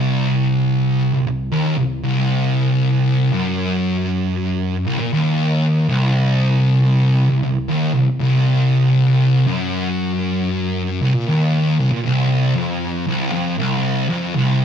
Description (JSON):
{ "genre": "metal", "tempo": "78 BPM", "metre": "4/4", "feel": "swing 66% on 8ths", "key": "C minor", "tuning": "A4 = 438 Hz", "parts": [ { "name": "thick fuzz guitar", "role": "solo", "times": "0.0-14.6 s", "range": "C2 to Bb2", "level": "-15 LUFS", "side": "equal", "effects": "distortion" } ], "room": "wet stone room reverb, RT60 1.0 s", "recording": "band playing live in one room", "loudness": "-15 LUFS", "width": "side -8 dB against mid", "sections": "0.0-14.6 A section", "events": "none", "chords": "none", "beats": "0.49 1.26 | 2.04 2.81 3.58 4.35 | 5.12 5.89 6.66 7.43 | 8.20 8.97 9.74 10.51 | 11.28 12.05 12.82 13.59 | 14.36" }